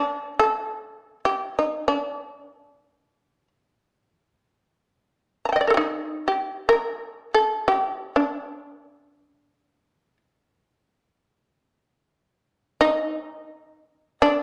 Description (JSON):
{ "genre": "japanese traditional, Japanese chamber music", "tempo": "free time", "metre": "none", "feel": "none", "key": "D miyako bushi", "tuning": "A4 = 436 Hz", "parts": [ { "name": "shamisen", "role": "solo", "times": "0.0-14.4 s", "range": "D4 to Bb5", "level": "-24 LUFS", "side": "equal", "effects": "none" } ], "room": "moderate recital hall reverb, RT60 1.4 s", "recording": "none", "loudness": "-24 LUFS", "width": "mono", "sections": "0.0-14.4 A section", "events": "none", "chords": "none" }